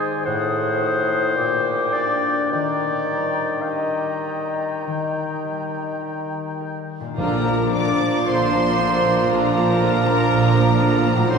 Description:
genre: classical, slow romantic movement for symphony orchestra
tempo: 50-62 BPM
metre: 4/4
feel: rubato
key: Eb major, Bb major from 7.2 s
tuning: A4 = 439 Hz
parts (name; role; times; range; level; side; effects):
- clear clarinet; second line; 0.0-11.4 s; D4 to F5; -26 LUFS; left 2 dB; none
- clear oboe; second line; 0.0-11.4 s; C5 to Ab5; -31 LUFS; equal; none
- small flute group; second line; 0.0-11.4 s; A5 to Eb6; -30 LUFS; left 2 dB; none
- clear bassoon; accompaniment; 0.0-11.4 s; Ab2 to F#3; -26 LUFS; equal; none
- concert harp; arpeggios; 0.0-11.4 s; Ab2 to Eb5; -30 LUFS; left 5 dB; none
- rich studio violin section; melody; 7.2-11.4 s; Bb5 to D6; -27 LUFS; left 3 dB; none
- rich studio violin section; second line; 7.2-11.4 s; Bb3 to Bb4; -29 LUFS; left 3 dB; none
- rich studio viola section; accompaniment; 7.2-11.4 s; D3 to D4; -27 LUFS; right 2 dB; none
- mellow French horn section; sustained chords; 7.2-11.4 s; F3 to Eb4; -26 LUFS; left 2 dB; none
- clear trumpet section; stabs; 7.2-11.4 s; Bb4 to D5; -23 LUFS; right 4 dB; none
- mellow tuba; bass; 7.2-11.4 s; A1 to Bb1; -27 LUFS; right 2 dB; none
- rich studio double bass section; bass; 7.2-11.4 s; A1 to Bb1; -25 LUFS; right 4 dB; none
- warm studio cello section; bass; 7.2-11.4 s; A2 to Bb2; -26 LUFS; right 4 dB; none
- timpani; percussion; 7.2-8.7 s; Bb2; -34 LUFS; left 1 dB; none
room: wet cathedral reverb, RT60 7.0 s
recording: recorded in a church or concert hall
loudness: -18 LUFS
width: side -5 dB against mid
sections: 0.0-7.2 A section; 7.2-11.4 B section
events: none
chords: 0.3 Adim7; 1.4 Bb69; 2.5 Eb; 7.2 Bb

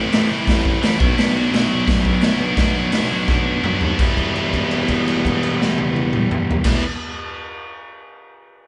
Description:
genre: garage rock duo or trio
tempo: 168 BPM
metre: 4/4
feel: straight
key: E minor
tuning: A4 = 437 Hz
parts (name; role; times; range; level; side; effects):
- biting overdriven guitar; riff; 0.0-6.8 s; E2 to F#4; -21 LUFS; equal; none
- warm tuba; bass; 0.0-6.8 s; E1 to D#2; -28 LUFS; equal; overdrive
- raw garage drum kit; drums; 0.1-6.7 s; crash cymbal, hi-hat, kick drum, snare drum, toms; -23 LUFS; equal; none
room: moderate stone room reverb, RT60 1.3 s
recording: band playing live in one room, nothing above 10.9 kHz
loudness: -18 LUFS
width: mono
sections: 0.0-4.0 A section; 4.0-6.9 B section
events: drum fill 3.3-4.0; held note 4.0-6.7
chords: 0.0 Am; 1.0 Bm; 4.0 Em

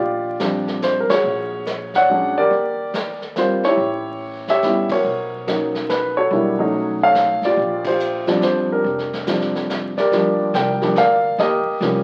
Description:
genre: jazz piano trio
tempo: 142 BPM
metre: 3/4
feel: swing 65% on 8ths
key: unclear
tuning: A4 = 441 Hz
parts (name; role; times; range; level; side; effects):
- warm grand piano; melody; 0.0-12.0 s; F3 to G5; -20 LUFS; equal; none
- upright bass; bass; 0.0-12.0 s; F1 to F2; -36 LUFS; equal; none
- vintage brush drum kit; drums; 0.4-12.0 s; brushed snare drum, hi-hat, kick drum, ride cymbal, snare drum; -31 LUFS; equal; none
room: moderate large studio reverb, RT60 1.4 s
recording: very old 78 rpm record, vinyl crackle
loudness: -19 LUFS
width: mono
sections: 0.0-10.1 A section; 10.1-12.0 B section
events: band accent 1.0, 4.8, 7.8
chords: 0.0 Bb69; 2.5 Eb6; 3.8 A7; 5.0 Bmaj7; 6.3 B9; 7.6 Bb69; 10.1 Ebmaj7; 11.4 Eb7

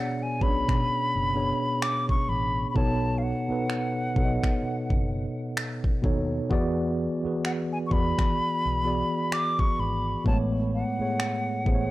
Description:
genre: contemporary R&B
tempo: 64 BPM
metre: 4/4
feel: swing 58% on 16ths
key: B dorian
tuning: A4 = 439 Hz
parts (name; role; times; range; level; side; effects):
- hollow concert flute; melody; 0.0-11.9 s; E#5 to D6; -29 LUFS; left 1 dB; tape echo
- mellow tine electric piano; accompaniment; 0.0-11.9 s; A2 to D#5; -28 LUFS; equal; medium stereo tremolo
- vintage muted fingered electric bass; bass; 0.4-11.9 s; F#1 to E3; -31 LUFS; equal; none
- smooth R&B drum kit; drums; 0.4-11.9 s; finger snaps, kick drum; -27 LUFS; equal; none
room: digital ambience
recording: dry, gritty hardware recording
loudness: -24 LUFS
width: side -17 dB against mid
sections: 0.0-11.9 A section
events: none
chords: 0.0 Bm69; 2.8 B9; 6.5 E7; 10.3 Amaj9

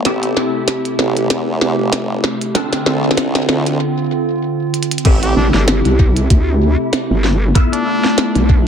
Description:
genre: glitch hop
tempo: 96 BPM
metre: 4/4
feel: swing 56% on 16ths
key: A minor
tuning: A4 = 435 Hz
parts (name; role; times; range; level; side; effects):
- warbly tape-like pad; sustained chords; 0.0-8.7 s; C3 to G4; -21 LUFS; right 2 dB; chorus, built-in reverb, sidechain pumping
- mellow electric guitar; stabs; 0.0-8.7 s; B3 to A4; -19 LUFS; equal; ensemble chorus, sidechain pumping, tape echo
- formant-sweep wobble bass; bass; 0.0-5.3 s; G1 to E2; -20 LUFS; equal; chorus, high-pass filter
- electronic kick drum; drums; 0.1-8.6 s; none; -12 LUFS; equal; high-pass filter on kick
- glitchy drum kit; drums; 0.1-8.5 s; crash cymbal, hi-hat, snare drum; -20 LUFS; equal; tape echo
- bright trumpet; melody; 5.2-8.4 s; D4 to G4; -23 LUFS; equal; vintage 12-bit sampler grit, tape echo
- vowel-sweep wobble bass; bass; 5.4-8.7 s; G1 to D2; -14 LUFS; equal; chorus
room: light reverb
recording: echo-heavy mix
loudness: -13 LUFS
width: side -8 dB against mid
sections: 0.0-5.1 A section; 5.1-8.7 B section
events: build-up 0.0-5.1; drum fill 0.0-3.8, 4.7-5.1; filter sweep on clean electric guitar 0.0-5.1; break 3.8-5.1; drop 5.1-8.7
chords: 0.1 Am7; 2.6 Dm7; 5.1 Am7; 7.6 Fmaj7#11

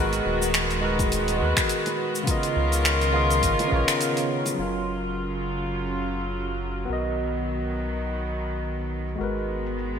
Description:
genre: sunset chillout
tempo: 104 BPM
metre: 4/4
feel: swing 56% on 16ths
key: unclear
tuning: A4 = 440 Hz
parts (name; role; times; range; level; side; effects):
- barky tine electric piano; accompaniment; 0.0-10.0 s; C#3 to D#5; -28 LUFS; equal; overdrive, auto-pan, ping-pong delay
- warm studio string section; sustained chords; 0.0-10.0 s; C#3 to A#4; -28 LUFS; left 1 dB; none
- round analog bass; bass; 0.0-10.0 s; D#1 to D#2; -29 LUFS; equal; none
- smooth R&B drum kit; drums; 0.1-10.0 s; cabasa, finger snaps, hi-hat; -27 LUFS; equal; overdrive, low-pass filter on hats, low-pass filter on perc, low-pass filter on snare, low-pass filter on room, gated reverb
- electronic kick drum; drums; 1.0-3.8 s; none; -27 LUFS; equal; none
- bongos; percussion; 1.0-4.6 s; none; -40 LUFS; right 2 dB; none
room: moderate lush hall reverb, RT60 2.5 s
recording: bright 1980s-style digital production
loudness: -23 LUFS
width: side -7 dB against mid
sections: 0.0-4.6 A section; 4.6-10.0 B section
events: break 4.0-4.6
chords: 0.0 G#m9; 2.3 C#13; 4.6 F#maj7; 6.9 Bmaj7; 9.2 G#m9

